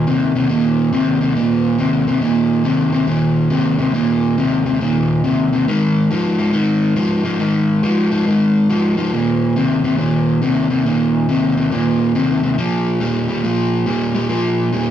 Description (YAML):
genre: blues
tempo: 139 BPM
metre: 4/4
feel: swing 66% on 8ths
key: Eb major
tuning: A4 = 442 Hz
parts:
  - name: overdriven semi-hollow guitar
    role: solo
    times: 0.0-14.9 s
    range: Eb2 to G3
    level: -14 LUFS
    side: equal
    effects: none
room: wet large studio reverb, RT60 1.2 s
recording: band playing live in one room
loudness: -14 LUFS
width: side -10 dB against mid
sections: 0.0-14.9 A section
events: none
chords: 0.0 Eb5; 5.7 Ab5; 9.1 Eb5; 12.6 Bb5